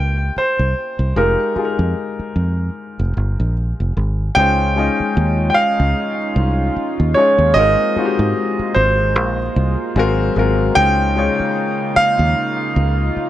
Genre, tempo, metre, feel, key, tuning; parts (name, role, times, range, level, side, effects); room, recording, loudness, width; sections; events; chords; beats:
R&B; 75 BPM; 4/4; swing 58% on 16ths; A4 = 440 Hz
warm concert grand piano; melody; 0.0-13.3 s; Bb4 to G5; -18 LUFS; right 1 dB; plate reverb
warm baby grand piano; accompaniment; 0.0-13.3 s; Ab3 to Eb5; -21 LUFS; left 5 dB; plate reverb
fingered electric bass; bass; 0.0-13.2 s; F1 to Ab2; -18 LUFS; equal
chorused pulse-width pad; sustained chords; 4.3-13.3 s; Db3 to F4; -24 LUFS; right 2 dB; wide subtle chorus, plate reverb
light reverb; -14 LUFS; side -13 dB against mid
0.0-4.4 A section; 4.4-13.3 B section
0.0 C7b9; 1.2 Fm11; 4.4 Dbmaj9; 7.6 Ab69; 10.0 Ab13; 10.8 Dbmaj9
0.35 | 1.15 1.95 2.75 3.55 | 4.35 5.15 5.95 6.75 | 7.55 8.35 9.15 9.95 | 10.75 11.55 12.35 13.15